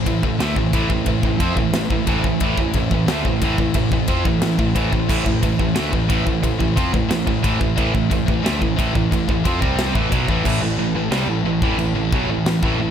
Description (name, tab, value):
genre	heavy metal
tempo	90 BPM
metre	4/4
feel	straight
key	A minor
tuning	A4 = 441 Hz
part	clear studio string section	sustained chords	0.0-12.9 s	C3 to E5	-33 LUFS	left 2 dB	none
part	heavy high-gain guitar	riff	0.0-12.9 s	A2 to C4	-25 LUFS	left 13 dB	distortion
part	thick fuzz guitar	riff	0.0-12.9 s	A2 to C4	-26 LUFS	equal	distortion
part	tight distorted guitar	riff	0.0-12.9 s	A2 to C4	-23 LUFS	right 11 dB	distortion
part	overdriven picked electric bass	bass	0.0-12.9 s	A1 to F2	-24 LUFS	left 1 dB	none
part	tight metal drum kit	drums	0.1-12.8 s	crash cymbal, kick drum, ride cymbal, snare drum	-22 LUFS	left 1 dB	none
room	little or no reverb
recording	none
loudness	-17 LUFS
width	side -8 dB against mid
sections	0.0-10.5 A section; 10.5-12.9 B section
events	none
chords	0.0 Am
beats	0.40 1.07 1.74 | 2.41 3.08 3.75 4.42 | 5.09 5.76 6.43 7.10 | 7.77 8.44 9.11 9.78 | 10.45 11.12 11.79 12.46